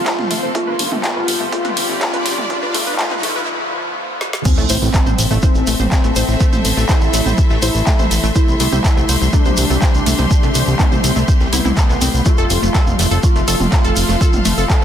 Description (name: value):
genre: melodic techno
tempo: 123 BPM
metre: 4/4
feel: straight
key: A minor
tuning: A4 = 438 Hz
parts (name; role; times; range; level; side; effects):
- wide unison lead; melody; 0.0-14.8 s; B3 to A4; -24 LUFS; equal; wide subtle chorus, sidechain pumping, tape echo
- dark detuned synth bell; second line; 0.0-14.8 s; C4 to A4; -27 LUFS; left 2 dB; chorus, sidechain pumping, ping-pong delay
- evolving wavetable pad; sustained chords; 0.0-14.8 s; C3 to C4; -28 LUFS; left 2 dB; none
- riser and sub drop; sound effects; 0.1-6.4 s; none; -26 LUFS; equal; none
- clear symphonic string section; texture; 0.0-14.8 s; A3 to C6; -25 LUFS; equal; sidechain pumping
- wide unison pluck; arpeggios; 0.1-14.8 s; A3 to C5; -24 LUFS; equal; sidechain pumping, ping-pong delay
- deep house drum kit; drums; 0.1-14.8 s; crash cymbal, handclaps, hi-hat, snare drum, toms; -21 LUFS; equal; sidechain pumping on hats, sidechain pumping on toms, sidechain pumping on cymbals
- dusty soul sampler-style drum kit; drums; 0.1-14.8 s; hi-hat, snare drum; -31 LUFS; right 3 dB; none
- electronic kick drum; drums; 0.1-14.8 s; none; -15 LUFS; equal; high-pass filter on kick, high-pass filter on room
- fat analog bass; bass; 0.2-14.8 s; F1 to C2; -19 LUFS; equal; sidechain pumping
- shekere; percussion; 4.5-14.8 s; none; -26 LUFS; equal; none
room: light reverb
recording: dense, heavily limited modern master, high-pass filter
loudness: -13 LUFS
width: side -9 dB against mid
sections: 0.0-4.5 A section; 4.5-14.8 B section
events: build-up 0.0-4.5; filter sweep on synth pluck 0.0-4.5; riser 0.1-3.5; break 3.5-4.5; drum fill 4.2; drop 4.5-14.8; impact 4.5-6.4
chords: 0.0 F; 0.6 G; 4.5 Am; 8.4 C; 12.3 F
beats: 0.06 | 0.55 1.04 1.53 2.01 | 2.50 2.99 3.48 3.97 | 4.45 4.94 5.43 5.92 | 6.41 6.89 7.38 7.87 | 8.36 8.84 9.33 9.82 | 10.31 10.79 11.28 11.77 | 12.26 12.75 13.23 13.72 | 14.21 14.70